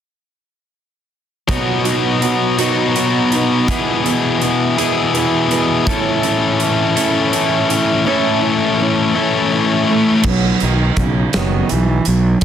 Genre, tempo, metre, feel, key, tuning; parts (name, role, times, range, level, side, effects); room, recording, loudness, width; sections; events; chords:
quiet-loud alternative rock; 55 BPM (dotted quarters); 6/8; straight; A4 = 439 Hz
fingerpicked acoustic archtop guitar; arpeggios; 1.5-12.4 s; A2 to F#4; -20 LUFS; right 8 dB
high-gain distorted guitar; riff; 1.5-10.2 s; A2 to A4; -15 LUFS; left 5 dB; distortion
big rock drum kit; drums; 1.5-12.4 s; crash cymbal, hi-hat, kick drum, snare drum; -22 LUFS; right 1 dB
warm cello; melody; 9.9-12.4 s; C#3 to A3; -18 LUFS; right 3 dB
fuzz fingered electric bass; bass; 10.2-12.4 s; F#1 to B1; -16 LUFS; equal; overdrive
light reverb, small room ambience; dense, heavily limited modern master; -13 LUFS; side -9 dB against mid
1.5-10.2 A section; 10.2-12.4 B section
1.5 B; 3.7 E/B; 5.9 A; 10.2 B5